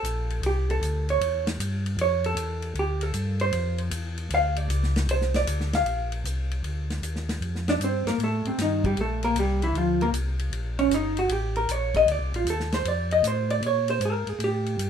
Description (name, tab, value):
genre	soul jazz organ trio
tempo	154 BPM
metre	4/4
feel	swing 67% on 8ths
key	D minor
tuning	A4 = 440 Hz
part	vintage hollow-body jazz guitar	accompaniment	0.0-14.9 s	C3 to F5	-25 LUFS	right 1 dB	none
part	mellow tonewheel organ	bass	0.0-14.9 s	G1 to Bb2	-27 LUFS	equal	slow rotary speaker
part	warm soul drum kit	drums	0.0-14.9 s	hi-hat, kick drum, ride cymbal, snare drum	-34 LUFS	left 1 dB	none
room	light reverb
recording	minimal, uncompressed stereo recording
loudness	-23 LUFS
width	side -8 dB against mid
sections	0.0-5.9 A section; 5.9-14.9 A section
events	hollow-body jazz guitar solo 0.0-14.9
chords	0.0 Am; 1.2 A5; 2.8 Dm9; 5.9 Bbadd9; 7.4 F13; 9.0 Bbmaj7; 10.5 Gdim; 12.1 Dm7; 13.6 Abadd9